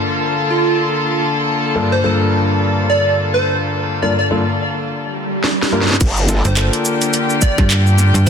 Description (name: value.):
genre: glitch hop.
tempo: 106 BPM.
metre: 4/4.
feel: swing 58% on 16ths.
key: G minor.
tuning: A4 = 435 Hz.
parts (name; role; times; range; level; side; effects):
rich chamber string section; sustained chords; 0.0-8.3 s; D3 to A4; -19 LUFS; left 2 dB; sidechain pumping.
plucky unison lead; melody; 0.5-8.3 s; F4 to D5; -20 LUFS; right 2 dB; lush chorus, dub echo.
warm concert grand piano; stabs; 1.8-8.3 s; G2 to Bb4; -19 LUFS; left 1 dB; sidechain pumping, dub echo.
swell; sound effects; 5.1-6.0 s; none; -22 LUFS; right 3 dB; none.
drum and bass drum kit; drums; 5.4-8.3 s; crash cymbal, handclaps, hi-hat, shaker, snare drum; -18 LUFS; right 1 dB; none.
growl bass; bass; 6.0-6.4 s; G1; -16 LUFS; right 1 dB; chorus.
electronic kick drum; drums; 6.0-8.3 s; none; -14 LUFS; equal; none.
slap-like FM bass; bass; 6.4-8.3 s; G1 to G2; -12 LUFS; right 1 dB; none.
room: light reverb.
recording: dense, heavily limited modern master.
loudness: -14 LUFS.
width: side -7 dB against mid.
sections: 0.0-6.0 A section; 6.0-8.3 B section.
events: swell 5.1-6.0; drum fill 5.4-6.0; drop 6.0-8.3.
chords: 0.0 Gm7.